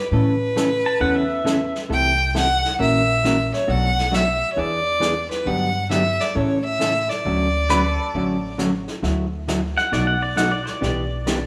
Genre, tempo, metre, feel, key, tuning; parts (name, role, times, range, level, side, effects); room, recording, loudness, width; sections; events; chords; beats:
country, western swing; 135 BPM; 4/4; swing 65% on 8ths; D major; A4 = 440 Hz
clear fiddle; melody; 0.0-8.6 s; B4 to G5; -24 LUFS; equal
hollow-body jazz guitar; accompaniment; 0.1-11.4 s; B2 to A#4; -26 LUFS; equal
upright bass; bass; 0.1-11.5 s; A1 to A2; -28 LUFS; equal
vintage brush drum kit; drums; 0.1-11.5 s; brushed snare drum, hi-hat, snare drum; -32 LUFS; equal
pedal steel guitar; second line; 0.9-1.8, 7.7-11.5 s; A4 to A5; -26 LUFS; equal
wet stone room reverb, RT60 1.4 s; band playing live in one room; -21 LUFS; mono
0.0-9.0 A section; 9.0-11.5 B section
pedal steel guitar solo 9.0-11.5
0.1 A; 1.9 C6; 2.8 F#7/A#; 3.7 Bm7; 4.6 E7; 5.5 Gmaj7; 6.4 A; 7.2 Dmaj7; 9.0 Dadd9; 9.9 B7; 10.8 Em7/B
| 0.11 0.56 1.01 1.45 | 1.90 2.34 2.79 3.24 | 3.68 4.13 4.57 5.02 | 5.47 5.91 6.36 6.80 | 7.25 7.69 8.14 8.59 | 9.03 9.48 9.92 10.37 | 10.81 11.26